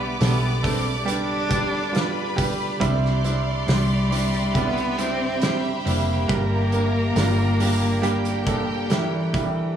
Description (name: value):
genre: pop ballad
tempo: 69 BPM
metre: 4/4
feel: straight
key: unclear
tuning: A4 = 440 Hz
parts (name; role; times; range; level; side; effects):
- warm cello; melody; 0.0-9.8 s; E3 to D4; -26 LUFS; left 2 dB; none
- clear studio violin section; second line; 0.0-9.7 s; G4 to D6; -31 LUFS; equal; none
- clear grand piano; accompaniment; 0.0-9.8 s; G2 to B4; -26 LUFS; right 4 dB; none
- granular cloud pad; sustained chords; 0.0-9.7 s; G4 to D6; -32 LUFS; left 1 dB; built-in reverb
- vintage muted fingered electric bass; bass; 0.0-9.7 s; F1 to C2; -24 LUFS; equal; none
- loose indie drum kit; drums; 0.2-9.5 s; hi-hat, kick drum, snare drum; -27 LUFS; right 1 dB; none
room: studio reverb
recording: studio ambience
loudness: -20 LUFS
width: side -9 dB against mid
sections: 0.0-9.8 A section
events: none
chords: 0.0 G/B; 2.8 Cadd9; 6.3 Gm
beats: 0.21 1.07 1.95 | 2.81 3.68 4.55 5.42 | 6.29 7.16 8.03 8.90